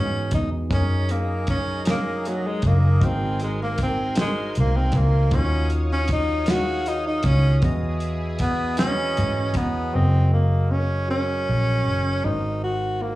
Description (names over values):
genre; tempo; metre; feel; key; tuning
slow six-eight R&B; 52 BPM (dotted quarters); 6/8; straight; unclear; A4 = 438 Hz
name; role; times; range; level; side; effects
breathy tenor saxophone; melody; 0.0-13.2 s; Gb3 to Gb4; -25 LUFS; equal; slapback echo
barky tine electric piano; accompaniment; 0.0-13.2 s; Eb3 to Bb5; -29 LUFS; right 2 dB; slapback echo
vintage muted fingered electric bass; bass; 0.0-13.2 s; Gb1 to G#2; -22 LUFS; equal; none
damped 70s drum kit; drums; 0.3-9.7 s; hi-hat, kick drum, snare drum; -24 LUFS; equal; none
lush unison pad; sustained chords; 0.7-9.9 s; E4 to Eb6; -37 LUFS; equal; chorus
room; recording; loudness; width
little or no reverb; live gig heard through the venue's PA, club reverb, small room ambience; -20 LUFS; side -17 dB against mid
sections
0.0-9.9 A section; 9.9-13.2 B section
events
tenor saxophone solo 0.0-9.9; tine electric piano fill 8.8-9.9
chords
0.0 Emaj9; 0.7 Gb69; 3.0 Ab9; 5.3 Ebm9; 7.6 Emaj9; 9.9 Gb69; 12.2 Ab9